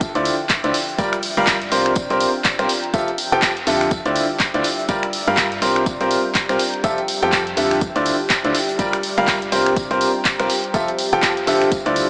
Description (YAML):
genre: piano house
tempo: 123 BPM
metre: 4/4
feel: swing 59% on 16ths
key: F major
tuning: A4 = 440 Hz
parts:
  - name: organ-like FM bass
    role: bass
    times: 0.0-12.0 s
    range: F1 to G2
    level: -36 LUFS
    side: equal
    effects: tube saturation, sidechain pumping
  - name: electronic kick drum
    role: drums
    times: 0.0-11.8 s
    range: none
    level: -28 LUFS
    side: equal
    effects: none
  - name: punchy analog drum machine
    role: drums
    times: 0.0-12.1 s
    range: finger snaps, handclaps, hi-hat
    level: -24 LUFS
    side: equal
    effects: none
  - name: soft brush drum kit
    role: drums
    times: 0.0-12.1 s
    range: hi-hat, snare drum, tambourine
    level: -34 LUFS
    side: equal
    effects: none
  - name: deep dark ambient pad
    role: texture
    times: 0.0-12.1 s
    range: F4 to Bb5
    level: -29 LUFS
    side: equal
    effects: chorus, built-in reverb, sidechain pumping
  - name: bright grand piano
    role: riff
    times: 0.2-12.0 s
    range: D3 to G5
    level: -21 LUFS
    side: equal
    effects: sidechain pumping, analog delay
room: wet lush hall reverb, RT60 2.1 s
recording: dreamy mix soaked in reverb, small speaker sound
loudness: -19 LUFS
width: mono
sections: 0.0-12.1 A section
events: none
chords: 0.0 Fmaj9; 1.0 Gm7; 1.7 C7sus4; 2.9 Fmaj9; 3.9 Dm9; 4.9 Gm7; 5.6 C7sus4; 6.8 Fmaj9; 7.8 Dm9; 8.8 Gm7; 9.5 C7sus4; 10.7 Fmaj9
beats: 0.01 0.50 | 0.99 1.47 1.96 2.45 | 2.94 3.42 3.91 4.40 | 4.89 5.38 5.86 6.35 | 6.84 7.33 7.82 8.30 | 8.79 9.28 9.77 10.25 | 10.74 11.23 11.72